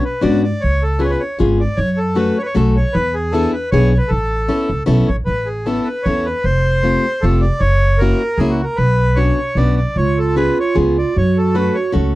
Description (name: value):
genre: musette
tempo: 154 BPM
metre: 3/4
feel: swing 53% on 8ths, rubato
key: A major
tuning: A4 = 440 Hz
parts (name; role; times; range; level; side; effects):
- accordion; melody; 0.0-11.9 s; F#4 to D5; -20 LUFS; equal; none
- picked plugged-in steel-string acoustic guitar; accompaniment; 0.0-12.1 s; A3 to A4; -18 LUFS; left 2 dB; none
- upright bass; bass; 0.2-12.2 s; F1 to G#2; -16 LUFS; equal; none
- mellow clarinet; second line; 10.0-12.2 s; E#4 to F#4; -19 LUFS; right 5 dB; none
room: little or no reverb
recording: dry, close 1970s-style studio recording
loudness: -14 LUFS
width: side -17 dB against mid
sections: 0.0-5.3 A section; 5.3-12.2 A section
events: none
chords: 0.0 Bmadd9; 0.6 C#7; 1.8 F#m; 2.9 E7; 4.1 Aadd9; 6.5 Fadd9; 7.6 F#7; 8.8 Bmadd9; 10.0 C#7; 11.2 F#m